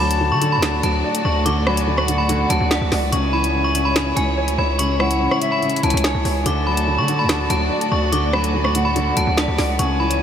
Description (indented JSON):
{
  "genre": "hip hop, drill",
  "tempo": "144 BPM",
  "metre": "4/4",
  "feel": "half-time",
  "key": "unclear",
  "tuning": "A4 = 442 Hz",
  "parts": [
    { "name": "metallic FM bell", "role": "melody", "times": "0.0-10.2 s", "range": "F#5 to D6", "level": "-23 LUFS", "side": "equal", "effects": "chorus, low-pass filter, diffuse ambient delay" },
    { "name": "silver concert flute", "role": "second line", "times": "0.0-10.2 s", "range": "E5 to A5", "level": "-26 LUFS", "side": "left 2 dB", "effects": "diffuse ambient delay" },
    { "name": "dark baby grand piano", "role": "accompaniment", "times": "0.0-10.2 s", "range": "C#3 to D5", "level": "-24 LUFS", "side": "equal", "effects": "low-pass filter" },
    { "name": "warm symphonic string section", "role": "sustained chords", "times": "0.0-10.2 s", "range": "G#3 to D5", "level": "-26 LUFS", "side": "left 1 dB", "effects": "none" },
    { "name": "distorted 808-style bass", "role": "bass", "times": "0.0-10.2 s", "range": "C#2 to D3", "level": "-22 LUFS", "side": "equal", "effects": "distortion" },
    { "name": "drill drum kit", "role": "drums", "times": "0.1-10.2 s", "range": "finger snaps, hi-hat, rim click, snare drum", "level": "-25 LUFS", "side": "equal", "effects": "overdrive" }
  ],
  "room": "moderate huge ambient reverb, RT60 7.5 s",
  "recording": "dreamy mix soaked in reverb",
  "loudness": "-16 LUFS",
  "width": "side -8 dB against mid",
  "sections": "0.0-10.2 A section",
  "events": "none",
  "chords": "0.0 D; 3.1 C#m; 6.5 D",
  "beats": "0.21 0.63 1.04 | 1.46 1.88 2.29 2.71 | 3.13 3.54 3.96 4.38 | 4.79 5.21 5.63 6.04 | 6.46 6.88 7.29 7.71 | 8.13 8.54 8.96 9.38 | 9.79 10.21"
}